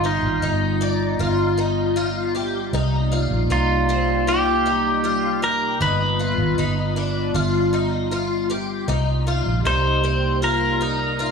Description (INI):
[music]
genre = dream pop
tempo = 78 BPM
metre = 4/4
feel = straight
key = C minor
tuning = A4 = 440 Hz
[part]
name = pedal steel guitar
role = melody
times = 0.0-11.3 s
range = Eb4 to C5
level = -22 LUFS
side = equal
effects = tape echo
[part]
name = warbly tape-like pad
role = sustained chords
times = 0.0-11.3 s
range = C3 to D5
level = -25 LUFS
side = equal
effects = chorus, built-in reverb
[part]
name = picked twelve-string acoustic guitar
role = arpeggios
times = 0.0-11.3 s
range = C4 to D5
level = -25 LUFS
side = left 4 dB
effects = ensemble chorus, tape echo
[part]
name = vintage muted fingered electric bass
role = bass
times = 0.0-11.3 s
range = G1 to C2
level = -24 LUFS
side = right 1 dB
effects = none
[part]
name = vibraphone with medium mallets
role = texture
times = 9.6-11.3 s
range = G4 to Bb4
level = -30 LUFS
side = right 15 dB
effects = tape echo
[sound]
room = light reverb, studio reverb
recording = dry, gritty hardware recording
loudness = -18 LUFS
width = side -5 dB against mid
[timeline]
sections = 0.0-11.3 A section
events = none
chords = 0.0 G7b13; 2.7 Cm7; 5.8 G7b13; 8.9 Cm7